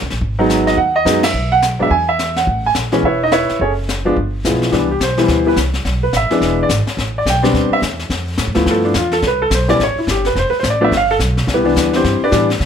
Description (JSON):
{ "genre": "jazz piano trio", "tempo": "213 BPM", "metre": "4/4", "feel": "swing 61% on 8ths", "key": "C major from 4.7 s", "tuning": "A4 = 441 Hz", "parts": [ { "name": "upright bass", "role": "bass", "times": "0.0-12.7 s", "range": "E1 to B2", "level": "-20 LUFS", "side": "equal", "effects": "none" }, { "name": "jazz brush drum kit", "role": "drums", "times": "0.1-12.7 s", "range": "brushed snare drum, hi-hat, kick drum, ride cymbal, snare drum", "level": "-22 LUFS", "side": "left 3 dB", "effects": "none" }, { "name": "warm grand piano", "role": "melody", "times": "0.4-12.5 s", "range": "E3 to G#5", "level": "-14 LUFS", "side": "equal", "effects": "plate reverb" } ], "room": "light reverb", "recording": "none", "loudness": "-13 LUFS", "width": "side -8 dB against mid", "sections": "0.0-4.7 A section; 4.7-12.7 B section", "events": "band accent 1.2; grand piano solo 4.7-12.7", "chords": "0.2 G#m7; 1.3 Bm; 1.9 E; 2.5 Aadd9; 3.6 F#sus2; 4.2 G7b9; 4.7 Cmaj9; 5.8 Asus2; 6.4 E7; 7.0 Am11; 8.1 Dm; 8.7 G13; 9.2 Cmaj7(no3); 9.8 Gsus2; 10.4 Dm; 10.9 G; 11.5 Cmaj9" }